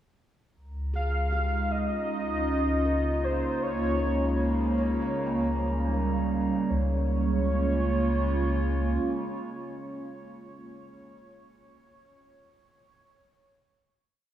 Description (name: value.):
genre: ambient.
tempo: 78 BPM.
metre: 4/4.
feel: straight.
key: Db lydian.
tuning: A4 = 440 Hz.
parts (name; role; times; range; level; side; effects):
overtone-sweeping drone; drone; 2.0-10.0 s; Db3 to Db4; -35 LUFS; equal; chorus, built-in reverb.
glass harmonica; texture; 0.5-6.7 s; Bb4 to Bb5; -41 LUFS; equal; none.
warbly tape-like pad; sustained chords; 1.2-10.4 s; Db3 to F4; -30 LUFS; right 1 dB; chorus, built-in reverb, phaser.
round analog bass; bass; 0.6-9.0 s; Db2; -29 LUFS; equal; none.
handpan; arpeggios; 0.9-10.0 s; G4 to G5; -45 LUFS; right 2 dB; none.
warm velvety synth lead; melody; 1.0-10.0 s; C5 to F5; -33 LUFS; equal; chorus, analog delay.
room: wet lush hall reverb, RT60 2.6 s.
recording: dreamy mix soaked in reverb, small room ambience.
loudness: -25 LUFS.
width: side -11 dB against mid.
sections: 0.6-6.7 A section; 6.7-9.8 final chord.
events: fade-in on glass harmonica 0.6-6.7.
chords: 0.6 Ebsus2/Db; 3.6 Db6; 5.2 Eb9/Db; 6.7 Db6.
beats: | 0.55 1.32 2.09 2.86 | 3.63 4.40 5.17 5.94 | 6.71 7.47 8.24 9.01.